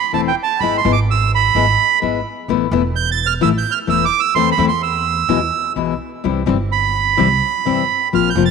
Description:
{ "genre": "tango", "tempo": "128 BPM", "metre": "4/4", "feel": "rubato", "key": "A minor", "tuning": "A4 = 440 Hz", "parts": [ { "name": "bandoneon", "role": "melody", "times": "0.0-8.5 s", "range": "G5 to A6", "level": "-17 LUFS", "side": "right 11 dB", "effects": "none" }, { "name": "nylon-string guitar", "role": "accompaniment", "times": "0.1-8.5 s", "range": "B2 to F4", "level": "-19 LUFS", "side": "left 11 dB", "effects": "none" }, { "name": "upright bass", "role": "bass", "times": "0.1-8.5 s", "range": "E1 to E2", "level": "-21 LUFS", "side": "right 2 dB", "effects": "none" } ], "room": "moderate plate reverb, RT60 3.0 s", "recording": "1960s-style stereo with parts hard left and right", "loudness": "-14 LUFS", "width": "side -5 dB against mid", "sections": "0.0-8.5 A section", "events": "none", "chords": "0.0 Am; 0.6 E/G#; 2.5 Asus2; 4.3 Am/E; 5.3 E; 6.2 C" }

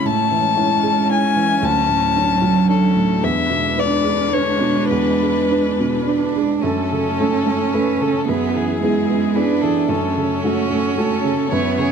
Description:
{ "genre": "neoclassical piano and strings", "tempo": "111 BPM", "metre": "3/4", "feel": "rubato", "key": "F# minor", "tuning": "A4 = 440 Hz", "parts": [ { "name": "warm violin", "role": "melody", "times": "0.0-11.9 s", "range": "F#4 to A5", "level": "-21 LUFS", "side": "left 6 dB", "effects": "none" }, { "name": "warm cello", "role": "second line", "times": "0.0-11.9 s", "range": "F#3 to D4", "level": "-21 LUFS", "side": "right 6 dB", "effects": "none" }, { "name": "felt-muted upright piano", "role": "accompaniment", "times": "0.0-11.9 s", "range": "D2 to C#5", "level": "-20 LUFS", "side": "right 1 dB", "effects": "none" }, { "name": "warm viola", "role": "accompaniment", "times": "0.0-11.9 s", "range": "C#4 to C#5", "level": "-25 LUFS", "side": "right 2 dB", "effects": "none" }, { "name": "bright studio string section", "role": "sustained chords", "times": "0.0-11.9 s", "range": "D3 to C#5", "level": "-29 LUFS", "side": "equal", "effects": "none" } ], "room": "moderate scoring stage reverb, RT60 1.5 s", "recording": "close, detailed microphones", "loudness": "-15 LUFS", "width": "side -7 dB against mid", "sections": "0.0-6.6 A section; 6.6-11.9 B section", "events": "none", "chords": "0.0 Amaj7; 1.6 Dmaj7; 3.2 E7; 6.6 F#m; 8.3 E/F#; 9.9 F#m" }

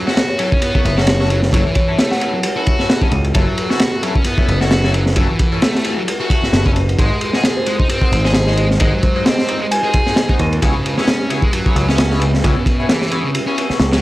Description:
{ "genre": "breakbeat, breaks", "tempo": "132 BPM", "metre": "4/4", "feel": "swing 56% on 16ths", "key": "F# dorian", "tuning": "A4 = 440 Hz", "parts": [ { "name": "deep dark ambient pad", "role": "sustained chords", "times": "0.0-14.0 s", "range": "G#3 to E5", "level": "-28 LUFS", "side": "equal", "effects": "chorus, built-in reverb, sidechain pumping" }, { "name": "thick fuzz guitar", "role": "riff", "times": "0.0-14.0 s", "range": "B2 to G#4", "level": "-21 LUFS", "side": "equal", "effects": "distortion, overdrive, tape echo" }, { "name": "band-passed chord stab", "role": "stabs", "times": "0.1-14.0 s", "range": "F#3 to C#5", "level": "-25 LUFS", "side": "left 2 dB", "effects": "phaser, tape echo" }, { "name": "crunchy breakbeat drum kit", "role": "drums", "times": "0.1-14.0 s", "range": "kick drum, ride cymbal, snare drum", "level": "-16 LUFS", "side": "equal", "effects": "none" }, { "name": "kalimba", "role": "melody", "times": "0.3-2.4, 7.6-10.4 s", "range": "B#4 to G#5", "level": "-23 LUFS", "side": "equal", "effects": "old record sound, vintage 12-bit sampler grit, tape echo" }, { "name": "overdriven picked electric bass", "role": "bass", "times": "0.8-14.0 s", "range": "F#1 to D#2", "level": "-17 LUFS", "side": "equal", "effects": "none" } ], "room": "little or no reverb", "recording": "dry, gritty hardware recording", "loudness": "-13 LUFS", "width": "side -17 dB against mid", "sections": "0.0-14.0 A section", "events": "kick drops out 13.3-14.0", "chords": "0.0 F#m7; 7.0 G#7; 10.6 C#m7" }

